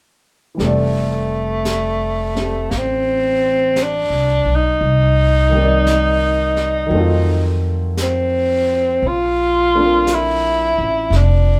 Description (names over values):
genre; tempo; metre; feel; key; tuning
jazz ballad; 57 BPM; 4/4; swing 69% on 8ths; F major; A4 = 440 Hz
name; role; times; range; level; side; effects
warm upright piano; accompaniment; 0.5-11.6 s; Eb3 to D5; -26 LUFS; equal; none
warm tenor saxophone; melody; 0.6-11.6 s; A3 to F4; -19 LUFS; equal; none
upright bass; bass; 0.6-11.6 s; F1 to F2; -21 LUFS; equal; none
jazz brush drum kit; drums; 0.6-11.6 s; brushed snare drum, hi-hat, snare drum; -33 LUFS; equal; none
room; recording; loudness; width
wet studio reverb, RT60 0.6 s; band playing live in one room; -17 LUFS; mono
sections
0.6-11.6 A section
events
none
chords
0.6 Fmaj13; 4.8 Cm9; 6.9 F7b9; 9.0 Bbmaj7